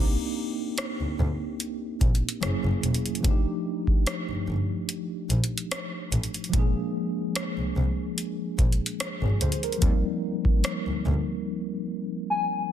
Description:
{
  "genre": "contemporary R&B",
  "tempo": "73 BPM",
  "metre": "4/4",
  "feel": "swing 54% on 16ths",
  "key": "unclear",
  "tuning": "A4 = 440 Hz",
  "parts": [
    { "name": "mellow tine electric piano", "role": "accompaniment", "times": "0.0-12.7 s", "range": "F3 to C5", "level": "-30 LUFS", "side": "equal", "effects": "medium stereo tremolo" },
    { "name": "rich double bass", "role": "bass", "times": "0.0-11.1 s", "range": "E1 to Eb2", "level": "-27 LUFS", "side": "equal", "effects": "none" },
    { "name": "booming analog drum machine", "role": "drums", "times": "0.8-10.9 s", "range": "hi-hat, kick drum, rim click", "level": "-26 LUFS", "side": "equal", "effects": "none" },
    { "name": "hollow clarinet-like synth lead", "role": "melody", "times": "12.3-12.4 s", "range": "Ab5", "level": "-25 LUFS", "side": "left 4 dB", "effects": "chorus" }
  ],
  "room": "light reverb, digital ambience",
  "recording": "dense, heavily limited modern master",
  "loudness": "-25 LUFS",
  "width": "side -10 dB against mid",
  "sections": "0.0-12.7 A section",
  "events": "break 11.5-12.7",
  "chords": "0.0 Cm9; 2.4 F#9; 3.2 F13; 6.5 Bb7; 9.8 Eb69",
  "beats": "0.78 1.60 2.42 | 3.25 4.07 4.89 5.71 | 6.53 7.36 8.18 9.00 | 9.82 10.64 11.46 12.29"
}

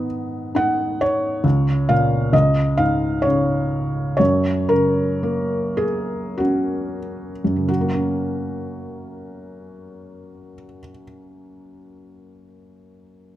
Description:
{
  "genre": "classical, lyrical solo piano",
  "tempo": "44-68 BPM",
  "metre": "3/4",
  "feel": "rubato",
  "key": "F# major",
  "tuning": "A4 = 443 Hz",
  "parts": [
    { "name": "felt-muted upright piano", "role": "solo", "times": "0.0-13.4 s", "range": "C#2 to F#5", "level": "-18 LUFS", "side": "equal", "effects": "none" }
  ],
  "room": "light reverb",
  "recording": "close, detailed microphones",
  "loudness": "-18 LUFS",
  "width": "side -13 dB against mid",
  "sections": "0.0-7.7 A section; 7.7-11.7 B section",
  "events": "slowing down 1.4-7.7",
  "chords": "0.0 G#m; 1.4 C#6; 2.3 C#5; 4.2 F#",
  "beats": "0.56 | 1.45 2.33 3.25 | 4.20 5.24 6.39 | 7.69 9.01 10.32"
}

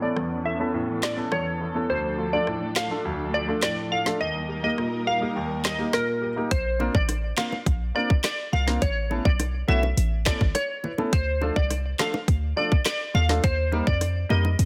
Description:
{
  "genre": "dancehall",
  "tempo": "104 BPM",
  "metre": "4/4",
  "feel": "straight",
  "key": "D phrygian",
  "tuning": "A4 = 445 Hz",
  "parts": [
    { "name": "glassy wavetable pluck", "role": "melody", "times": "0.0-14.4 s", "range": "Bb4 to F5", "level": "-30 LUFS", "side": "equal", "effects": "chorus, low-pass filter, delay" },
    { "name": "clear grand piano", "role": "accompaniment", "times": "0.0-14.4 s", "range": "D2 to B4", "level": "-31 LUFS", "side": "equal", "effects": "low-pass filter" },
    { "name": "muted studio string section", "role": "sustained chords", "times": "0.0-6.5 s", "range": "E3 to Bb4", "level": "-34 LUFS", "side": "equal", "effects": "sidechain pumping, low-pass filter" },
    { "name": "island pop drum kit", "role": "drums", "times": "0.2-14.7 s", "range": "handclaps, hi-hat, kick drum, rim click, snare drum", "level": "-27 LUFS", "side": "equal", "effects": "overdrive" },
    { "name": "short 808-style bass", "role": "bass", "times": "6.5-14.7 s", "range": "G#1 to F2", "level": "-27 LUFS", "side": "equal", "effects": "none" },
    { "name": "bongos", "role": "percussion", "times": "6.8-14.6 s", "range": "none", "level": "-35 LUFS", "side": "equal", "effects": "none" }
  ],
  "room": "light reverb",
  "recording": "dense, heavily limited modern master",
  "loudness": "-25 LUFS",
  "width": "mono",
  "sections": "0.0-6.5 A section; 6.5-14.7 B section",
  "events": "none",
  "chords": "0.0 Aadd9; 1.9 Dm; 4.2 Eb; 6.5 Bbadd9; 8.8 Aadd9; 11.1 Dm; 13.4 Eb",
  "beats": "0.17 0.74 1.32 | 1.90 2.47 3.05 3.63 | 4.21 4.78 5.36 5.94 | 6.51 7.09 7.67 8.24 | 8.82 9.40 9.97 10.55 | 11.13 11.71 12.28 12.86 | 13.44 14.01 14.59"
}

